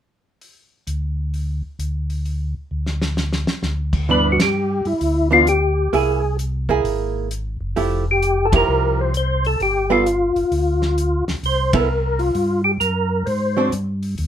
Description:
soul jazz organ trio; 131 BPM; 4/4; swing 66% on 8ths; A4 = 440 Hz
warm soul drum kit; drums; 0.4-14.3 s; crash cymbal, hi-hat, kick drum, ride cymbal, snare drum; -24 LUFS; equal
mellow tonewheel organ; bass; 0.9-14.3 s; F1 to Ab2; -22 LUFS; equal; overdrive, chorus vibrato, slow rotary speaker
percussive tonewheel organ; melody; 4.1-13.7 s; E4 to C5; -18 LUFS; left 1 dB; slow rotary speaker, chorus vibrato
archtop guitar, miked and amplified; accompaniment; 4.1-13.7 s; E3 to A4; -20 LUFS; right 6 dB
moderate club reverb, RT60 0.6 s; minimal, uncompressed stereo recording; -17 LUFS; side -10 dB against mid
0.4-4.1 A section; 4.1-14.3 B section
drum fill 2.7-3.6; band accent 4.3, 8.5, 11.7
0.4 N.C.; 4.1 G6; 5.9 Caug7; 7.8 Fmaj9; 9.6 G7(no3); 11.4 C5; 13.3 Ab7#11
| 0.41 0.87 1.33 1.79 | 2.25 2.71 3.17 3.63 | 4.09 4.55 5.01 5.47 | 5.93 6.39 6.85 7.30 | 7.76 8.22 8.68 9.14 | 9.60 10.06 10.52 10.97 | 11.43 11.89 12.35 12.81 | 13.26 13.72 14.18

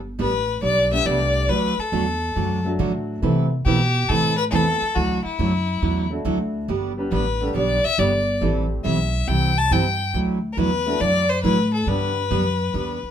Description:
country, western swing; 139 BPM; 4/4; swing 68% on 8ths; G major; A4 = 436 Hz
upright bass; bass; 0.0-13.1 s; G1 to C3; -24 LUFS; equal
clear fiddle; melody; 0.2-13.1 s; E4 to A5; -22 LUFS; left 3 dB
picked steel-string acoustic guitar; accompaniment; 0.2-13.0 s; C3 to B4; -24 LUFS; right 4 dB
clear upright piano; accompaniment; 0.9-12.1 s; F#3 to B4; -29 LUFS; equal
wet small room reverb, RT60 0.5 s; band playing live in one room; -19 LUFS; side -9 dB against mid
0.0-13.1 A section
0.0 Gadd9; 1.5 D; 3.2 Amadd9; 5.0 Dadd9; 6.7 G; 8.4 Am7; 10.1 Dadd9; 11.9 G
0.19 0.62 1.06 | 1.49 1.92 2.36 2.79 | 3.22 3.66 4.09 4.52 | 4.96 5.39 5.82 6.25 | 6.69 7.12 7.55 7.98 | 8.42 8.85 9.28 9.71 | 10.14 10.58 11.01 11.44 | 11.88 12.31 12.74

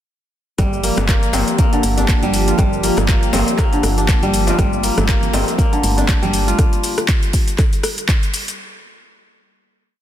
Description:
afro house; 120 BPM; 4/4; swing 57% on 16ths; G minor; A4 = 439 Hz
warm analog pad; sustained chords; 0.6-6.5 s; F3 to G4; -23 LUFS; right 1 dB; chorus, sidechain pumping
kora; arpeggios; 0.6-8.6 s; D3 to F4; -21 LUFS; left 1 dB; sidechain pumping, ping-pong delay
woody FM bass; bass; 0.6-6.5 s; G1; -20 LUFS; equal; sidechain pumping
deep house drum kit; drums; 0.6-8.6 s; handclaps, hi-hat, rim click, shaker; -22 LUFS; left 1 dB; overdrive, studio ambience
electronic kick drum; drums; 0.6-8.2 s; -16 LUFS; equal; overdrive, studio ambience
djembe; percussion; 0.6-6.1 s; -27 LUFS; left 4 dB
congas; percussion; 4.6-6.6 s; -28 LUFS; right 4 dB
light reverb, small room ambience; dense, heavily limited modern master; -14 LUFS; side -11 dB against mid
0.6-8.6 drop
drop 0.6-8.6
0.6 Gm7
| 0.59 1.09 1.59 2.09 | 2.59 3.09 3.59 4.09 | 4.59 5.09 5.59 6.09 | 6.59 7.09 7.59 8.09

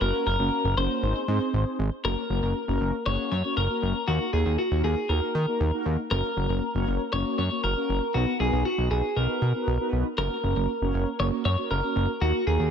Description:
synth-pop; 118 BPM; 4/4; straight; A4 = 441 Hz
twelve-string electric guitar; melody; 0.0-12.7 s; Gb4 to Db5; -28 LUFS; left 1 dB; digital delay
mellow synth brass; accompaniment; 0.0-12.7 s; Bb3 to Db5; -30 LUFS; equal; chorus
fat analog bass; bass; 0.0-12.7 s; Gb1 to Eb3; -25 LUFS; equal
light reverb; -23 LUFS; side -7 dB against mid
0.0-2.0 A section; 2.0-12.7 B section
0.0 Gb; 1.0 Ab; 2.0 Gb; 4.1 Ebm; 6.1 Gb; 8.1 Cb; 10.2 Gb
| 0.01 0.52 1.03 1.54 | 2.04 2.55 3.06 3.57 | 4.08 4.59 5.09 5.60 | 6.11 6.62 7.13 7.64 | 8.15 8.65 9.16 9.67 | 10.18 10.69 11.20 11.71 | 12.21

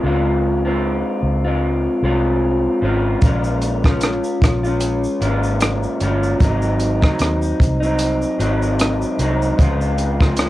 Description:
indie pop, bedroom pop; 76 BPM; 4/4; swing 55% on 16ths; A4 = 441 Hz
electric guitar through a small old amp; accompaniment; 0.0-10.5 s; Ab2 to F4; -19 LUFS; left 1 dB; wide subtle chorus, vibrato effect, cassette tape
vintage muted fingered electric bass; bass; 0.0-10.5 s; G1 to Eb2; -21 LUFS; equal
compact cocktail drum kit; drums; 3.2-10.5 s; hi-hat, kick drum, rim click, shaker; -18 LUFS; equal; cassette tape
moderate booth ambience, RT60 0.3 s; home recording on cassette; -16 LUFS; side -15 dB against mid
0.0-10.5 A section
0.0 Dbmaj7; 3.2 Bbm7; 6.4 Ab7; 9.6 Dbmaj7
| 0.04 0.84 1.63 2.43 | 3.22 4.02 4.81 5.61 | 6.40 7.20 7.99 8.79 | 9.58 10.38

